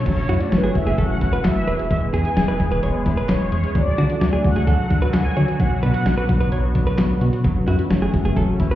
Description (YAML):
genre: synth-pop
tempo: 130 BPM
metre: 4/4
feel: straight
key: unclear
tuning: A4 = 436 Hz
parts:
  - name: mellow synth brass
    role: melody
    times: 0.0-6.7 s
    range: B4 to G#5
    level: -26 LUFS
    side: equal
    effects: chorus, analog delay
  - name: sweeping resonant pad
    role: sustained chords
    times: 0.0-8.8 s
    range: D3 to G#4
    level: -25 LUFS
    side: left 1 dB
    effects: chorus
  - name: analog pluck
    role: arpeggios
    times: 0.1-8.8 s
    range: F#3 to G#4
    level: -29 LUFS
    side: left 3 dB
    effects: chorus, analog delay
  - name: round analog bass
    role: bass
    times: 0.1-8.7 s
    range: E1 to D3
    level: -21 LUFS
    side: equal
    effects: none
  - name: clean 12-bit digital drum machine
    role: drums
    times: 0.1-8.8 s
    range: crash cymbal, handclaps, hi-hat, kick drum, snare drum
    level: -21 LUFS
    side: equal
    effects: none
  - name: direct-recorded clean electric guitar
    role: second line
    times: 0.3-8.8 s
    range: F#4 to C#5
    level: -28 LUFS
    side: right 2 dB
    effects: analog delay
room: moderate recital hall reverb, RT60 1.6 s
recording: heard muffled through a wall, club reverb, EQ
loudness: -17 LUFS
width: side -13 dB against mid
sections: 0.1-8.8 A section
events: none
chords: 0.1 F#m7; 1.7 E; 3.8 D; 5.6 Bm; 7.4 F#m7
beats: | 0.06 0.52 0.98 1.44 | 1.91 2.37 2.83 3.29 | 3.75 4.21 4.67 5.14 | 5.60 6.06 6.52 6.98 | 7.44 7.91 8.37